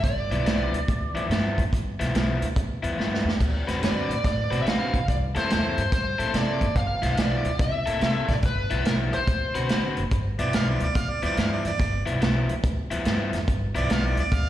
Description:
electric blues shuffle; 143 BPM; 4/4; swing 65% on 8ths; G mixolydian; A4 = 444 Hz
dark smooth lead guitar; melody; 0.0-1.3, 3.8-9.9 s; Bb4 to F5; -28 LUFS; equal; overdrive, slapback echo
upright bass; bass; 0.0-14.5 s; F#1 to D3; -28 LUFS; equal
vintage drum kit; drums; 0.0-14.4 s; crash cymbal, hi-hat, kick drum, snare drum; -26 LUFS; right 1 dB
overdriven electric guitar; riff; 0.3-14.2 s; G2 to B4; -29 LUFS; left 3 dB; slapback echo
warm harmonica; second line; 10.4-14.5 s; D5 to F5; -29 LUFS; right 4 dB; slapback echo
light reverb; live gig heard through the venue's PA, recital hall reverb; -22 LUFS; side -12 dB against mid
0.0-10.1 A section; 10.1-14.5 B section
drum fill 3.0-3.4; harmonica solo 10.1-14.5
0.0 G6; 3.4 D6; 5.1 C13; 6.8 G6; 7.6 C6; 8.4 G6; 9.3 D6; 10.1 G6

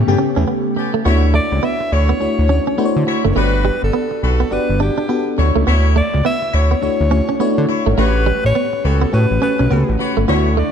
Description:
R&B; 104 BPM; 4/4; swing 61% on 16ths; D major; A4 = 443 Hz
breathy alto saxophone; melody; 0.0-10.7 s; G4 to E5; -22 LUFS; left 1 dB; ping-pong delay
FM electric piano with soft pad layer; accompaniment; 0.0-10.7 s; C#3 to D5; -20 LUFS; left 2 dB; chorus
lush unison pad; sustained chords; 0.0-1.0, 10.3-10.7 s; D3 to F#5; -31 LUFS; right 2 dB
fat analog bass; bass; 0.0-10.6 s; F#1 to D3; -16 LUFS; equal
warm horn section; stabs; 0.1-10.6 s; B3 to C#5; -25 LUFS; left 3 dB
direct-recorded clean electric guitar; riff; 0.2-10.7 s; G3 to D4; -22 LUFS; right 5 dB; wide subtle chorus
light reverb; dark, warm production; -14 LUFS; side -8 dB against mid
0.0-1.1 A section; 1.1-10.7 B section
break 0.5-1.1
0.0 A9; 1.1 Dmaj9; 3.4 Gmaj7; 5.4 Dmaj9; 8.0 A13

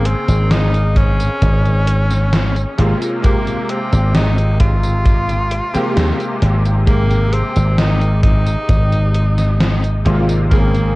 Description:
vaporwave; 66 BPM; 4/4; straight; Ab major; A4 = 439 Hz
edgy tenor saxophone; melody; 0.0-11.0 s; Bb3 to F4; -22 LUFS; equal; vintage 12-bit sampler grit, tape echo
bright electric grand piano; accompaniment; 0.0-11.0 s; C3 to Ab4; -22 LUFS; equal; ensemble chorus, dub echo
dry thumbed slap bass; bass; 0.0-11.0 s; Ab1 to Eb2; -14 LUFS; equal; tube saturation
gated 80s digital drum machine; drums; 0.1-10.9 s; hi-hat, snare drum, tambourine; -22 LUFS; equal; gated reverb, gated reverb snare, dub echo
kick drum; drums; 1.0-10.7 s; -15 LUFS; equal
warbly tape-like pad; sustained chords; 10.8-11.0 s; Bb4 to C6; -32 LUFS; left 1 dB
light reverb, small room ambience; echo-heavy mix, cassette tape; -13 LUFS; side -21 dB against mid
0.0-11.0 A section
0.0 Bbm9/Ab; 2.8 Abmaj9

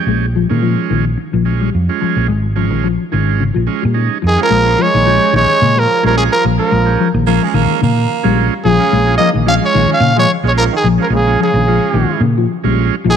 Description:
afrobeat; 109 BPM; 4/4; swing 54% on 16ths; Bb dorian; A4 = 440 Hz
combo organ; accompaniment; 0.0-13.0 s; Ab3 to G4; -20 LUFS; right 14 dB
mellow electric guitar; arpeggios; 0.1-13.2 s; Db3 to Ab3; -18 LUFS; left 9 dB; phaser, tape echo
hollow-body short-scale fingered electric bass; bass; 0.1-13.2 s; Ab1 to Bb2; -15 LUFS; equal
growling trumpet; melody; 4.3-13.2 s; Ab4 to F5; -14 LUFS; equal
brilliant trombone; second line; 4.3-13.1 s; Db3 to Db4; -21 LUFS; right 12 dB
raspy baritone saxophone; second line; 7.3-8.5 s; Ab3 to Bb3; -20 LUFS; right 9 dB
moderate plate reverb, RT60 2.8 s; 1960s-style stereo with parts hard left and right; -11 LUFS; side -8 dB against mid
0.0-4.5 A section; 4.5-13.2 B section
0.0 Bbm7

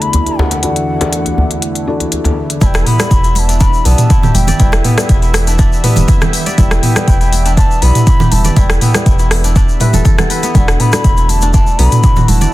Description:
afro house; 121 BPM; 4/4; straight; E minor; A4 = 439 Hz
mellow hollow bansuri; melody; 0.0-12.5 s; F#5 to B5; -20 LUFS; left 2 dB; digital delay
warm analog pad; sustained chords; 0.0-12.5 s; E2 to E5; -22 LUFS; right 1 dB; chorus, tremolo, sidechain pumping
felt-muted upright piano; stabs; 0.0-12.5 s; E3 to F#5; -22 LUFS; left 2 dB; sidechain pumping, low-pass filter, digital delay
afro-pop drum kit; drums; 0.0-12.5 s; hi-hat, rim click, toms; -15 LUFS; equal; soft clipping on snare
djembe; percussion; 0.1-2.3 s; -16 LUFS; left 1 dB
kora; arpeggios; 2.6-12.5 s; B3 to D5; -22 LUFS; left 1 dB; sidechain pumping, digital delay
warm sub bass; bass; 2.6-12.5 s; E1 to B1; -14 LUFS; equal; sidechain pumping
electronic kick drum; drums; 2.6-12.1 s; -11 LUFS; equal
congas; percussion; 2.6-12.5 s; -19 LUFS; right 4 dB
egg shaker; percussion; 2.6-12.5 s; -26 LUFS; left 2 dB
small room ambience; dense, heavily limited modern master; -9 LUFS; side -16 dB against mid
0.0-2.6 A section; 2.6-12.5 B section
drop 2.6-12.5
0.0 D/E; 2.6 Em7; 10.6 D/E

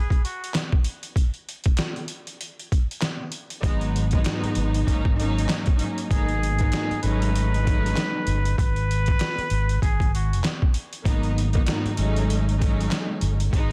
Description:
hip hop, boom-bap hip-hop; 97 BPM; 4/4; swing 58% on 16ths; G# minor; A4 = 439 Hz
trumpet with straight mute; melody; 0.0-0.5, 6.1-10.4 s; F#4 to B4; -32 LUFS; equal; delay
trip hop sampler-style drum kit; drums; 0.1-13.7 s; handclaps, hi-hat, kick drum, snare drum; -27 LUFS; equal
dark studio string section; accompaniment; 3.6-13.7 s; G#2 to D#4; -30 LUFS; equal
fingered electric bass; bass; 3.6-13.7 s; G1 to G#1; -26 LUFS; equal
studio reverb; dense, heavily limited modern master; -24 LUFS; mono
0.0-13.7 A section
break 0.0-3.6
0.0 N.C.; 3.6 G#m7; 4.9 G#9sus4; 6.1 G#m7; 7.0 B7/G#; 8.6 G#m; 11.1 G#m7; 12.0 F#m69

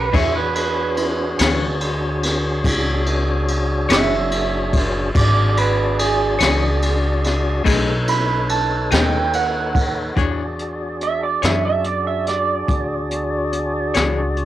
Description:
slow blues; 48 BPM (dotted quarters); 12/8; straight; E mixolydian; A4 = 438 Hz
electric guitar through a small old amp; second line; 0.0-14.4 s; G#4 to B5; -22 LUFS; right 7 dB; analog chorus
tonewheel organ; sustained chords; 0.0-14.4 s; D4 to D5; -23 LUFS; left 1 dB; slow rotary speaker
upright bass; bass; 0.0-14.4 s; F#1 to F#2; -22 LUFS; equal
clean electric guitar; accompaniment; 0.1-14.2 s; B2 to C#5; -21 LUFS; left 7 dB; tremolo
jazz brush drum kit; drums; 0.1-14.4 s; hi-hat, kick drum, ride cymbal, snare drum; -22 LUFS; left 1 dB; cassette tape
light reverb; home recording on cassette; -16 LUFS; side -13 dB against mid
0.0-10.2 A section; 10.2-14.4 A section
clean electric guitar solo 0.0-14.4
0.1 E13; 7.7 B13; 10.2 E13

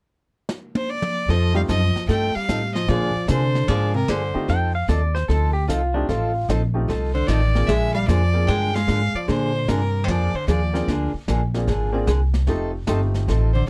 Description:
country, western swing; 150 BPM; 4/4; swing 66% on 8ths; F mixolydian; A4 = 440 Hz
jazz brush drum kit; drums; 0.5-13.7 s; brushed snare drum, hi-hat, kick drum, snare drum, toms; -32 LUFS; equal
clear fiddle; melody; 0.8-4.5, 7.1-10.9, 13.5-13.7 s; Bb4 to G5; -28 LUFS; equal
archtop guitar, miked and amplified; second line; 1.3-4.5, 7.1-10.9, 13.6-13.7 s; C3 to A3; -28 LUFS; equal
picked old ladder-braced acoustic guitar; accompaniment; 1.3-13.5 s; D3 to A4; -29 LUFS; equal
upright bass; bass; 1.3-13.7 s; F1 to C3; -24 LUFS; equal
clear upright piano; accompaniment; 1.5-1.7, 4.3-13.5 s; A3 to Ab4; -30 LUFS; equal
pedal steel guitar; second line; 4.5-6.5 s; D4 to G5; -28 LUFS; equal
little or no reverb; -21 LUFS; mono
0.0-1.3 A section; 1.3-13.7 B section
drum fill 0.5-1.3
0.0 N.C.; 1.3 F9; 2.9 Bb9; 4.5 F7; 7.7 Bb9; 12.5 F9

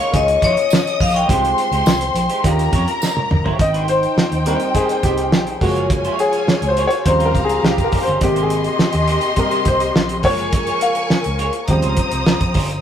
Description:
lush 1970s-style soul; 104 BPM; 4/4; straight; Ab major; A4 = 442 Hz
vibraphone with hard mallets; melody; 0.0-2.8 s; Db5 to G5; -18 LUFS; left 2 dB; slapback echo
dark studio string section; second line; 0.0-12.8 s; Eb4 to Eb6; -22 LUFS; left 2 dB
clear concert grand piano; accompaniment; 0.0-12.8 s; C3 to F5; -20 LUFS; left 1 dB
clean electric guitar; riff; 0.0-12.7 s; G3 to Db5; -27 LUFS; right 4 dB
vintage muted fingered electric bass; bass; 0.1-12.8 s; Gb1 to F2; -22 LUFS; equal
cloth-damped thuddy drum kit; drums; 0.1-12.8 s; hi-hat, kick drum, snare drum, toms; -19 LUFS; right 1 dB
tambourine; percussion; 0.7-3.2 s; -29 LUFS; right 4 dB
moderate studio reverb, RT60 0.5 s; rough rehearsal-room recording; -14 LUFS; side -9 dB against mid
0.0-3.6 A section; 3.6-12.8 B section
drum fill 3.0-3.6; grand piano solo 3.6-12.8
0.0 Db69; 1.3 Fm9/C; 2.4 Eb9; 3.6 Abmaj9; 5.6 Gbmaj9; 7.1 Eb13; 8.2 Abmaj9; 10.2 Gbmaj9; 11.7 Eb13

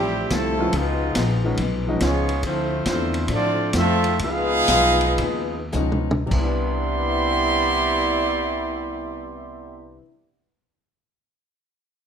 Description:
jazz, big band swing; 99-141 BPM; 4/4; swing 67% on 8ths; C major; A4 = 440 Hz
clear trumpet section; melody; 0.0-10.0 s; Ab3 to C6; -23 LUFS; right 1 dB
warm trombone section; second line; 0.0-10.0 s; Ab2 to F4; -26 LUFS; right 2 dB
picked old ladder-braced acoustic guitar; accompaniment; 0.0-10.1 s; C3 to E4; -32 LUFS; left 8 dB
warm upright piano; accompaniment; 0.0-10.1 s; C3 to F4; -30 LUFS; equal
upright bass; bass; 0.0-10.0 s; A1 to A2; -26 LUFS; equal
vintage drum kit; drums; 0.3-6.5 s; crash cymbal, hi-hat, kick drum, ride cymbal, snare drum, toms; -28 LUFS; equal
moderate large studio reverb, RT60 1.1 s; minimal, uncompressed stereo recording; -19 LUFS; side -7 dB against mid
0.0-6.3 A section; 6.3-11.2 B section
slowing down 2.4-6.3; drum fill 5.7-6.3
0.0 Dm9; 0.7 Db9; 2.4 Dm9; 4.2 Db9; 6.3 Cmaj9

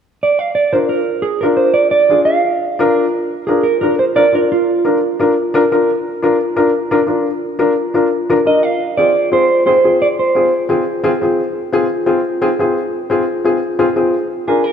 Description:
latin; 175 BPM; 4/4; straight; A4 = 438 Hz
mellow electric guitar; melody; 0.2-5.2, 8.5-10.5, 14.5-14.7 s; F4 to F5; -14 LUFS; right 3 dB; spring reverb
warm upright piano; accompaniment; 0.7-14.6 s; C4 to Bb4; -14 LUFS; left 2 dB
wet plate reverb, RT60 2.5 s; heard from further back in the room; -12 LUFS; side -8 dB against mid
0.4-3.1 A section; 3.1-14.1 B section
0.4 Bb; 8.6 Fm; 14.1 Bb

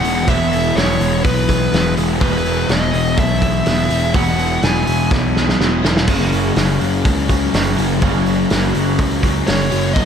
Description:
rock, shoegaze and dream pop; 124 BPM; 4/4; straight; A4 = 442 Hz
fuzz lead guitar; melody; 0.0-5.1, 9.5-10.1 s; B4 to G#5; -21 LUFS; equal; distortion, digital delay
crunchy overdriven guitar; riff; 0.0-10.1 s; E2 to B3; -22 LUFS; right 1 dB
thick fuzz guitar; riff; 0.0-10.1 s; E2 to B3; -21 LUFS; left 11 dB; distortion, ensemble chorus
twangy electric guitar; riff; 0.0-10.1 s; E2 to F#4; -25 LUFS; right 13 dB; reverse reverb
fuzz picked electric bass; bass; 0.0-10.1 s; E1 to C#2; -20 LUFS; right 1 dB; overdrive
loose indie drum kit; drums; 0.0-10.1 s; crash cymbal, hi-hat, kick drum, snare drum; -19 LUFS; right 1 dB
small room ambience; -14 LUFS; side -7 dB against mid
0.0-10.1 A section
drum fill 5.1-6.1
0.0 Eadd9; 6.1 F#7

